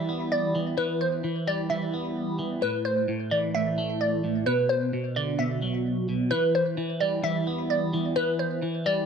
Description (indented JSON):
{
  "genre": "hip hop",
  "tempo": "130 BPM",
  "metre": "4/4",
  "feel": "half-time",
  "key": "E minor",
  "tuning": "A4 = 439 Hz",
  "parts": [
    { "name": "glassy wavetable pluck", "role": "melody", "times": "0.0-9.0 s", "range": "B4 to E5", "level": "-27 LUFS", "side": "equal", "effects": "chorus, low-pass filter, tape echo" },
    { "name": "clean electric guitar", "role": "accompaniment", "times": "0.0-9.1 s", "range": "A2 to B3", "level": "-27 LUFS", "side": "right 1 dB", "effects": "phaser, low-pass filter" }
  ],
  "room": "moderate concert hall reverb, RT60 1.8 s, digital ambience",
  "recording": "none",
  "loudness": "-24 LUFS",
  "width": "side -6 dB against mid",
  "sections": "0.0-6.3 A section; 6.3-9.1 B section",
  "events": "none",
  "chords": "0.0 Em; 2.6 Am; 4.5 Bm; 6.3 Em",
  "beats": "0.31 | 0.78 1.24 1.70 2.16 | 2.62 3.08 3.54 4.01 | 4.47 4.93 5.39 5.85 | 6.31 6.78 7.24 7.70 | 8.16 8.62"
}